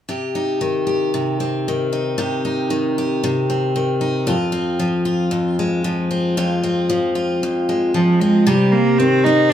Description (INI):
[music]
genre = acoustic pop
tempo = 114 BPM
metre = 4/4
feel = swing 55% on 16ths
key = C minor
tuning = A4 = 440 Hz
[part]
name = picked steel-string acoustic guitar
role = accompaniment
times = 0.1-9.5 s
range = F2 to G4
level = -17 LUFS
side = left 1 dB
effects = none
[part]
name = rich cello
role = melody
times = 8.0-9.5 s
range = F3 to Eb4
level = -14 LUFS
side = right 2 dB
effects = none
[sound]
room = moderate studio reverb, RT60 0.8 s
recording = band playing live in one room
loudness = -16 LUFS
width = side -10 dB against mid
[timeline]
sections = 0.1-8.5 A section; 8.5-9.5 B section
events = none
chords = 0.1 Cm; 4.3 Fm; 8.5 Cm